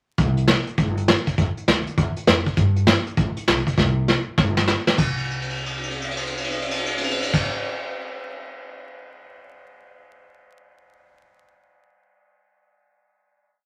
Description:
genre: rockabilly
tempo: 200 BPM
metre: 4/4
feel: swing 64% on 8ths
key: C major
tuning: A4 = 440 Hz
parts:
  - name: upright bass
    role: bass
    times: 0.2-7.3 s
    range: G1 to G2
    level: -27 LUFS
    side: equal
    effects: none
  - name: vintage brush drum kit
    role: drums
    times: 0.2-8.8 s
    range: crash cymbal, hi-hat, kick drum, ride cymbal, snare drum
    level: -23 LUFS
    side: equal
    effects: none
room: wet studio ambience, RT60 0.5 s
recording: vinyl crackle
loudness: -22 LUFS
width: mono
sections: 0.2-5.0 A section; 5.0-7.4 final note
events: drum fill 3.8-5.0, 5.1-7.3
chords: none

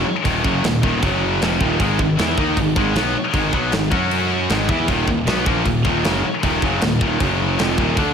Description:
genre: heavy metal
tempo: 155 BPM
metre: 4/4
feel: straight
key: Eb minor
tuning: A4 = 435 Hz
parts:
  - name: heavy high-gain guitar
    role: riff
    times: 0.0-8.1 s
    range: Eb2 to Gb4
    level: -24 LUFS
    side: equal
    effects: distortion
  - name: high-gain distorted guitar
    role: riff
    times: 0.0-8.1 s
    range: Eb2 to Gb4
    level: -22 LUFS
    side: left 10 dB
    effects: distortion
  - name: tight distorted guitar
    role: riff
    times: 0.0-8.1 s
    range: Eb2 to Gb4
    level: -24 LUFS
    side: right 11 dB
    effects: distortion
  - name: fuzz picked electric bass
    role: bass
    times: 0.0-8.1 s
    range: Eb1 to Gb2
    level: -24 LUFS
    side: equal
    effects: overdrive
  - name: tight metal drum kit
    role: drums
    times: 0.3-8.1 s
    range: crash cymbal, kick drum, snare drum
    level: -22 LUFS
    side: equal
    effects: none
room: studio ambience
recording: none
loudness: -16 LUFS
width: side -7 dB against mid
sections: 0.0-8.1 A section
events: none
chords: 0.0 Ebm; 1.0 Gb5; 1.4 Eb5; 1.8 Ab5; 3.9 Gb5; 4.5 Ab5; 4.9 Ebm; 7.2 Gb5; 7.6 Eb5

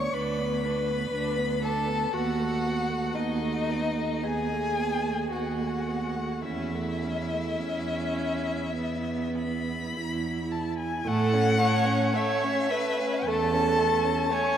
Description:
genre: classical, slow romantic movement for string quartet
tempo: 48-60 BPM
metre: 4/4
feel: rubato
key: A major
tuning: A4 = 440 Hz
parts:
  - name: rich violin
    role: melody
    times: 0.0-14.6 s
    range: D#5 to C#6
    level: -31 LUFS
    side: left 4 dB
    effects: none
  - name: warm violin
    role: second line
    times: 0.0-14.6 s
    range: A3 to C#5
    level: -32 LUFS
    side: left 1 dB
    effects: none
  - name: warm viola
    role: accompaniment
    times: 0.0-14.6 s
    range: A3 to C#5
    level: -31 LUFS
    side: right 3 dB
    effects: none
  - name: warm cello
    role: bass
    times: 0.1-14.1 s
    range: D2 to A2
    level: -30 LUFS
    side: right 4 dB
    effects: none
room: wet cathedral reverb, RT60 4.9 s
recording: in a vast, echoing space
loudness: -25 LUFS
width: side -9 dB against mid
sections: 0.0-11.1 A section; 11.1-14.6 A section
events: none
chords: 0.0 Bm/D; 2.1 B7/D#; 6.5 A/E; 8.8 E5; 11.1 A

